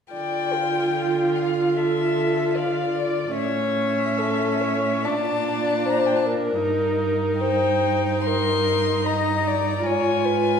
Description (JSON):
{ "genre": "classical, slow romantic movement for string quartet", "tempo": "74 BPM", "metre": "4/4", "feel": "uneven beats, rubato", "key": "D minor", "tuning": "A4 = 442 Hz", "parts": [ { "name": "rich violin", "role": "melody", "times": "0.1-10.6 s", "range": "D5 to C6", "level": "-27 LUFS", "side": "left 7 dB", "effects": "none" }, { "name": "dark violin", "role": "second line", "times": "0.1-10.6 s", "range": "F4 to F5", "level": "-24 LUFS", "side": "left 4 dB", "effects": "none" }, { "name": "warm viola", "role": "accompaniment", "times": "0.1-10.6 s", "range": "C#4 to E#4", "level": "-24 LUFS", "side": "right 2 dB", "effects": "none" }, { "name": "warm cello", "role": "bass", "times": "0.1-10.6 s", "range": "G2 to D3", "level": "-28 LUFS", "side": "right 5 dB", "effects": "none" } ], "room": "wet recital hall reverb, RT60 1.5 s", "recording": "recorded in a church or concert hall", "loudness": "-20 LUFS", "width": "side -7 dB against mid", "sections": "0.1-10.6 A section", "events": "none", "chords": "0.1 Dm; 3.4 A; 5.0 Bbmaj7; 6.6 Eb/G; 9.9 G#m6", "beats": "| 0.12 0.95 1.76 2.57 | 3.36 4.18 5.05 5.86 | 6.63 7.39 8.26 9.07 | 9.86" }